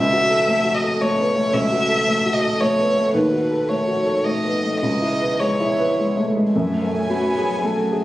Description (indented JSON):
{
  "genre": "neoclassical piano and strings",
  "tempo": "104-114 BPM",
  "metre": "3/4",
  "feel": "rubato",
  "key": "unclear",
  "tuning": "A4 = 440 Hz",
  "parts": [
    { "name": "warm violin", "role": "melody", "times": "0.0-8.0 s", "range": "B4 to G#5", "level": "-21 LUFS", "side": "equal", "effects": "none" },
    { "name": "warm upright piano", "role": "accompaniment", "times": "0.0-8.0 s", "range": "C#2 to B4", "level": "-20 LUFS", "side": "left 1 dB", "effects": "none" },
    { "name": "chorused pulse-width pad", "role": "sustained chords", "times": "0.0-8.0 s", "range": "A3 to G#5", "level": "-30 LUFS", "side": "right 2 dB", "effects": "none" },
    { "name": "dark cello", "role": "second line", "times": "6.2-8.0 s", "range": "G#3 to B3", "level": "-23 LUFS", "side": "right 1 dB", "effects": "none" }
  ],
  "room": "light reverb",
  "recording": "recorded on a phone in the room, studio reverb, compression",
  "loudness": "-17 LUFS",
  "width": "side -15 dB against mid",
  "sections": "0.0-6.5 A section; 6.5-8.0 B section",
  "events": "none",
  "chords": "0.0 F#m7/C#; 3.1 D#dim; 4.8 C#m7; 6.5 F#madd9"
}